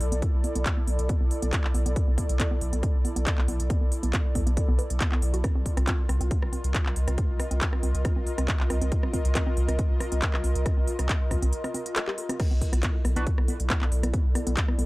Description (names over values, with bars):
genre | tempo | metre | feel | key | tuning
driving peak-time techno | 138 BPM | 4/4 | straight | unclear | A4 = 444 Hz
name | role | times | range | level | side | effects
saturated sub bass | bass | 0.0-14.9 s | B1 to C2 | -27 LUFS | equal | tube saturation, sidechain pumping, low-pass filter
techno drum kit | drums | 0.0-14.9 s | crash cymbal, handclaps, hi-hat, rim click | -32 LUFS | equal | sidechain pumping on hats, small room ambience, sidechain pumping on toms, sidechain pumping on cymbals
airy breathy pad | texture | 0.0-14.9 s | E4 to Eb5 | -34 LUFS | equal | chorus, sidechain pumping
woody wave-folded pluck | riff | 0.1-14.8 s | B3 to B4 | -36 LUFS | right 1 dB | chorus, tube saturation, sidechain pumping, tape echo
electronic kick drum | drums | 0.2-14.7 s | none | -26 LUFS | equal | small room ambience
sync-sweep polysynth | stabs | 13.2 s | D4 to B4 | -36 LUFS | right 2 dB | chorus, sidechain pumping, tape echo
room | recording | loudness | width
digital ambience | dry, gritty hardware recording | -23 LUFS | side -21 dB against mid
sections
0.0-14.9 A section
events
break 11.5-12.4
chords
0.0 Bm; 5.4 Cm; 12.4 Bm